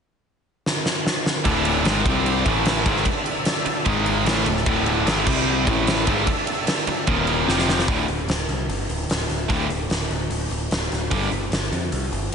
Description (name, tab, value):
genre	hard rock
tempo	149 BPM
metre	4/4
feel	straight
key	unclear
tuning	A4 = 440 Hz
part	huge arena drum kit	drums	0.7-12.3 s	crash cymbal, hi-hat, kick drum, ride cymbal, snare drum	-23 LUFS	equal	none
part	overdriven tonewheel organ	sustained chords	1.4-7.9 s	G#3 to G5	-30 LUFS	equal	chorus vibrato, slow rotary speaker
part	crunchy overdriven guitar	riff	1.4-11.3 s	D2 to C4	-25 LUFS	left 8 dB	slapback echo
part	tight distorted guitar	riff	1.4-11.3 s	D2 to C4	-25 LUFS	right 9 dB	distortion, slapback echo
part	modern bright picked electric bass	bass	1.5-12.3 s	D1 to F2	-27 LUFS	equal	none
room	moderate lush hall reverb, RT60 1.9 s, small room reverb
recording	big arena sound, nothing above 10.5 kHz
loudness	-19 LUFS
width	side -6 dB against mid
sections	0.0-1.4 A section; 1.4-7.9 B section; 7.9-12.3 C section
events	drum fill 0.6-1.4, 7.5-7.9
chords	0.0 N.C.; 1.4 D5; 2.1 C5; 2.5 A5; 2.9 D5; 3.9 G#5; 4.3 D5; 5.3 C5; 5.7 A5; 6.1 D5; 7.1 Eb5; 7.5 F5; 7.9 D5; 11.1 G5